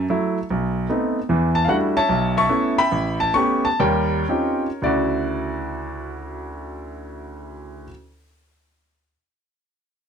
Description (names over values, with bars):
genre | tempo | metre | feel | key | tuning
solo jazz | 105-154 BPM | 4/4 | swing 66% on 8ths, rubato | D major | A4 = 440 Hz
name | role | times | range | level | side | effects
clear baby grand piano | solo | 0.0-7.9 s | A1 to C#6 | -20 LUFS | equal | none
room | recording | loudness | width
light reverb | close, detailed microphones | -18 LUFS | side -7 dB against mid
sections
0.0-1.3 A section; 1.3-4.8 B section; 4.8-9.2 C section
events
slowing down 1.3-4.8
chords
0.0 F#m7; 0.5 B7b9; 1.3 Em11; 2.1 B9sus4; 2.9 A9; 3.8 Eb13; 4.8 Dmaj9